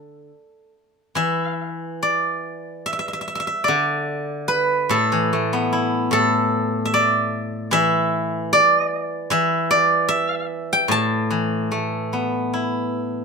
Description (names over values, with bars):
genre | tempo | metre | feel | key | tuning
chinese traditional, Chinese solo plucked strings | 74 BPM | 4/4 | uneven beats, rubato | A shang mode | A4 = 440 Hz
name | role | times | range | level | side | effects
steel-string zither | solo | 0.0-13.2 s | A2 to A5 | -18 LUFS | equal | none
room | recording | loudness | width
light reverb | minimal, uncompressed stereo recording | -18 LUFS | side -4 dB against mid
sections
0.0-1.2 A section; 1.2-13.2 B section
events
none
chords
none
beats
0.29 | 1.17 2.02 2.86 3.69 | 4.51 5.32 6.12 6.93 | 7.73 8.52 9.31 10.11 | 10.91 11.72 12.55